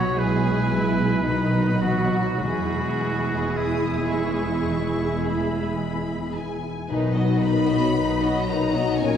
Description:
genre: classical, slow romantic movement for symphony orchestra.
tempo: 50-58 BPM.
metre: 4/4.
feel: rubato.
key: E major.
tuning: A4 = 440 Hz.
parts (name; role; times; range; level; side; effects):
clear symphonic violin section; melody; 0.0-9.2 s; G#5 to D#6; -34 LUFS; left 3 dB; none.
clear oboe; second line; 0.0-5.8 s; E4 to C#5; -28 LUFS; right 1 dB; none.
rich studio violin section; second line; 0.0-9.2 s; D#4 to D#5; -31 LUFS; left 2 dB; none.
warm symphonic viola section; accompaniment; 0.0-9.2 s; D#3 to F#4; -27 LUFS; right 1 dB; none.
concert harp; arpeggios; 0.0-9.2 s; A#2 to G#4; -28 LUFS; left 4 dB; none.
dark symphonic cello section; bass; 0.0-9.2 s; E2 to B2; -29 LUFS; right 2 dB; none.
warm studio double bass section; bass; 0.0-9.2 s; E1 to B1; -27 LUFS; right 2 dB; none.
mellow French horn section; sustained chords; 6.9-9.2 s; F#3 to D#4; -27 LUFS; left 5 dB; none.
room: wet scoring stage reverb, RT60 2.0 s.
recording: heard from further back in the room.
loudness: -20 LUFS.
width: side -8 dB against mid.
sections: 0.0-6.9 A section; 6.9-9.2 B section.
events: none.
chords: 0.0 E/B; 1.3 B; 2.4 E; 6.9 B.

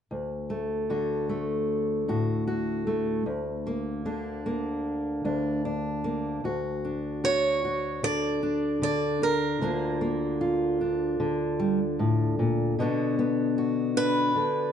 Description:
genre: acoustic folk duo or small band.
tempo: 76 BPM.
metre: 4/4.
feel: straight.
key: D major.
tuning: A4 = 440 Hz.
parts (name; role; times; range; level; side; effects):
fingerpicked steel-string acoustic guitar; accompaniment; 0.1-14.7 s; D2 to F#4; -26 LUFS; left 1 dB; none.
picked swing-style acoustic guitar; melody; 7.2-14.7 s; Bb4 to D5; -27 LUFS; right 2 dB; none.
room: wet large studio reverb, RT60 1.2 s.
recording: dark, warm production, nothing above 10.9 kHz.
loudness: -25 LUFS.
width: side -8 dB against mid.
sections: 0.1-6.4 A section; 6.4-14.7 B section.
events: none.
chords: 0.1 D; 3.3 Bb/D; 6.4 D; 9.6 Bb/D; 12.8 Bm.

